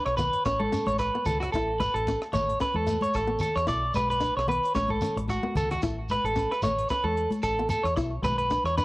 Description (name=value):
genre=highlife guitar band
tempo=112 BPM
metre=4/4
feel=swing 54% on 16ths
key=A major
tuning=A4 = 440 Hz
part: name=flamenco guitar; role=accompaniment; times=0.0-8.8 s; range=A3 to E4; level=-33 LUFS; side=left 3 dB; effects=none
part: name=electric guitar at the edge of break-up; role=arpeggios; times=0.0-8.8 s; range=F#4 to D5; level=-26 LUFS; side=right 1 dB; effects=tape echo
part: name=deep dub fingered electric bass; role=bass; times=0.1-8.8 s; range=A1 to E2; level=-32 LUFS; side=equal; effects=none
part: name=compact cocktail drum kit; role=drums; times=0.1-8.8 s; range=hi-hat, kick drum, rim click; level=-37 LUFS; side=equal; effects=cassette tape
part: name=congas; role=percussion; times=0.2-8.8 s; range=none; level=-34 LUFS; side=left 2 dB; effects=none
part: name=shekere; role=percussion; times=0.2-8.8 s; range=none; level=-37 LUFS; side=equal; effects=none
room=light reverb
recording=home recording on cassette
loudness=-24 LUFS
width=side -20 dB against mid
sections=0.0-8.8 A section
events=drum fill 5.2-5.8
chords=0.5 F#m/A (rootless); 1.5 A; 3.7 Bm; 4.8 F#m/A; 5.8 A; 8.0 Bm